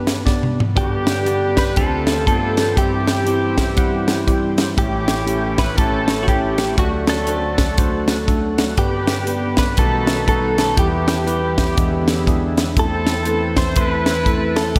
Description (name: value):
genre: uptempo gospel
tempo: 120 BPM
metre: 4/4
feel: swing 61% on 8ths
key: unclear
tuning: A4 = 438 Hz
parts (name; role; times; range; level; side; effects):
- clear horn section; melody; 0.0-14.8 s; A3 to C5; -26 LUFS; equal; tape echo
- direct-recorded clean electric guitar; melody; 0.0-14.8 s; F#4 to C5; -27 LUFS; equal; phaser, tape echo
- bell-like tine electric piano; accompaniment; 0.0-14.8 s; A1 to F#5; -24 LUFS; equal; none
- crisp fusion drum kit; drums; 0.1-14.8 s; hi-hat, kick drum, snare drum, toms; -22 LUFS; equal; none
- overdriven tonewheel organ; sustained chords; 0.8-14.8 s; G2 to B4; -29 LUFS; equal; slow rotary speaker, chorus vibrato
room: wet lush hall reverb, RT60 2.5 s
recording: dreamy mix soaked in reverb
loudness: -18 LUFS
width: mono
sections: 0.0-14.8 A section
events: drum fill 0.3-0.8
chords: 0.0 G; 1.8 Dm7; 2.3 G9; 2.8 C/G; 4.8 A7; 6.8 D; 8.8 G; 9.8 B7b13; 10.8 Em; 11.8 E7; 12.8 Am/E